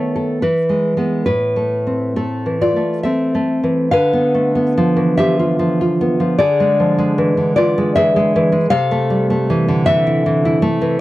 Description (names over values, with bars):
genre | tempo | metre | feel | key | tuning
romantic piece for solo classical guitar | 66-80 BPM | 3/4 | rubato | A minor | A4 = 440 Hz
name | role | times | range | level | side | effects
nylon-string guitar | solo | 0.0-11.0 s | A2 to F5 | -14 LUFS | equal | none
room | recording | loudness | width
little or no reverb | dry, close 1970s-style studio recording | -14 LUFS | side -16 dB against mid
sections
0.0-3.9 A section; 3.9-11.0 B section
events
none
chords
0.4 E; 1.3 Am; 3.9 Bdim/D; 6.4 E7/D; 8.7 Am/C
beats
0.43 | 1.27 2.17 3.04 | 3.91 4.76 5.59 | 6.39 7.17 7.97 | 8.73 9.51 10.27